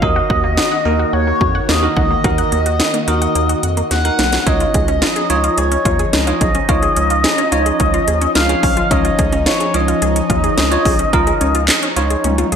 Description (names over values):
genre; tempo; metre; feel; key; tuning
synth-pop; 108 BPM; 4/4; straight; unclear; A4 = 440 Hz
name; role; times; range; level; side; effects
expressive synth lead; melody; 0.0-12.6 s; Db5 to Gb5; -18 LUFS; left 2 dB; chorus, phaser, digital delay
bell-like tine electric piano; accompaniment; 0.0-12.5 s; Eb4 to Db5; -22 LUFS; right 5 dB; lush chorus
phased analog pad; sustained chords; 0.0-12.6 s; Eb3 to Gb4; -22 LUFS; equal; phaser, chorus
wide unison pluck; arpeggios; 0.0-12.6 s; Bb3 to Gb5; -24 LUFS; left 2 dB; auto-pan, digital delay
round analog bass; bass; 0.0-12.6 s; Cb2 to F2; -19 LUFS; equal; none
house drum kit; drums; 0.0-12.6 s; handclaps, hi-hat, kick drum, snare drum, toms; -18 LUFS; equal; overdrive, gated reverb
room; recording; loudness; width
moderate plate reverb, RT60 1.6 s; bright 1980s-style digital production; -13 LUFS; side -7 dB against mid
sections
0.0-12.6 A section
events
drum fill 3.9-4.5, 12.2-12.6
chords
0.0 Ebm; 4.5 Dbadd9